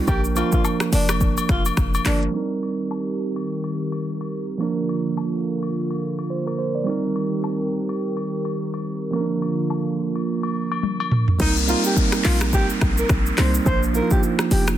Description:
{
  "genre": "afrobeats",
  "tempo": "106 BPM",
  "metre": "4/4",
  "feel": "swing 58% on 16ths",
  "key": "C minor",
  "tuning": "A4 = 439 Hz",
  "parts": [
    { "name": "bell-like tine electric piano", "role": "accompaniment", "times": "0.0-14.8 s", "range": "F3 to D5", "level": "-24 LUFS", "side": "right 4 dB", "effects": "none" },
    { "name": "breathy alto saxophone", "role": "melody", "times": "0.1-2.2, 11.4-14.7 s", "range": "D4 to C5", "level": "-27 LUFS", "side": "left 1 dB", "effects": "ping-pong delay" },
    { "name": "short 808-style bass", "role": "bass", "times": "0.1-2.3, 11.4-14.8 s", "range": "F1 to C2", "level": "-22 LUFS", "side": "equal", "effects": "none" },
    { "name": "afro-pop drum kit", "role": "drums", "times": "0.1-2.3, 10.8-14.8 s", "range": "crash cymbal, finger snaps, handclaps, hi-hat, kick drum, rim click, shaker, toms", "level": "-22 LUFS", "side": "equal", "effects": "soft clipping on snare" },
    { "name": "agogo bells and woodblock", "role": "percussion", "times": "0.1-11.1 s", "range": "none", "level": "-32 LUFS", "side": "left 8 dB", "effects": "none" },
    { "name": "hollow soft pad", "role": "sustained chords", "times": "2.3-11.4 s", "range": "D3 to Bb4", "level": "-28 LUFS", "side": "left 1 dB", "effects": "chorus" },
    { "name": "downlifter", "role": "sound effects", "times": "11.4-14.8 s", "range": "none", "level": "-28 LUFS", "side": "left 2 dB", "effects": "none" }
  ],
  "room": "light reverb, digital ambience",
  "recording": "dense, heavily limited modern master, low-pass filter",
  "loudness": "-20 LUFS",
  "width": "side -12 dB against mid",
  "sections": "0.0-2.3 A section; 2.3-11.4 B section; 11.4-14.8 A section",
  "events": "filter sweep 2.3-11.4; drum fill 10.8-11.4",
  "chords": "0.1 Bb; 2.3 Cm7; 4.6 Bb; 6.9 Cm7; 9.1 Bb; 11.4 Cm7; 13.7 Bb"
}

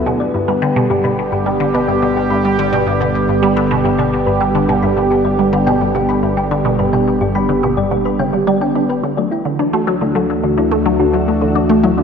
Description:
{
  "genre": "ambient",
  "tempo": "107 BPM",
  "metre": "4/4",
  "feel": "straight",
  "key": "G major",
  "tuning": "A4 = 441 Hz",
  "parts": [
    { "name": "sweeping resonant pad", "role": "sustained chords", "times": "0.0-12.0 s", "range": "D3 to G4", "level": "-16 LUFS", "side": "right 1 dB", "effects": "chorus" },
    { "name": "thumb-piano-like synth pluck", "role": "arpeggios", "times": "0.0-12.0 s", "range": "A3 to B5", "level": "-21 LUFS", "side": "left 4 dB", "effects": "chorus, auto-pan, ping-pong delay" },
    { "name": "analog drone", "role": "bass", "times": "1.2-12.0 s", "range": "G1 to D2", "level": "-26 LUFS", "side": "equal", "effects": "chorus" },
    { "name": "resonant blip pluck", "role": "riff", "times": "0.1-12.0 s", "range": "G2 to D4", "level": "-18 LUFS", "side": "equal", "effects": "phaser, analog chorus, ping-pong delay" },
    { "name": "wind-like tuned noise texture", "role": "texture", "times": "10.1-12.0 s", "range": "E5", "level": "-37 LUFS", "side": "right 5 dB", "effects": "none" }
  ],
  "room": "wet lush hall reverb, RT60 3.1 s",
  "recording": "dreamy mix soaked in reverb",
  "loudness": "-13 LUFS",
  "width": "side -6 dB against mid",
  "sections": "0.0-9.0 A section; 9.0-12.0 B section",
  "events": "none",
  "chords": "0.1 G; 9.0 Dadd9"
}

